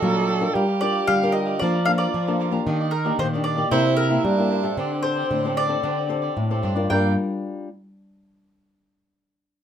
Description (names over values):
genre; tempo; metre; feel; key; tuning
samba; 113 BPM; 4/4; straight; G minor; A4 = 440 Hz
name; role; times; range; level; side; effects
mandolin; melody; 0.0-7.1 s; Bb4 to G5; -24 LUFS; left 2 dB; none
breathy tenor saxophone; second line; 0.0-7.2 s; Bb3 to A4; -26 LUFS; right 6 dB; none
cavaquinho; accompaniment; 0.0-7.1 s; D4 to Bb5; -31 LUFS; right 4 dB; none
nylon-string guitar; accompaniment; 0.0-7.7 s; G2 to Bb4; -27 LUFS; left 4 dB; none
nylon-string guitar; bass; 0.0-7.2 s; G2 to G3; -25 LUFS; equal; none
room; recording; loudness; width
moderate studio ambience, RT60 0.5 s; minimal, uncompressed stereo recording; -20 LUFS; side -9 dB against mid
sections
0.0-6.9 A section; 6.9-9.0 B section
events
none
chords
0.0 Ebmaj9; 0.5 Gm7; 1.6 Bbmaj7/F; 2.7 Ebmaj7; 3.7 C7; 4.8 D7sus4; 6.9 Gm7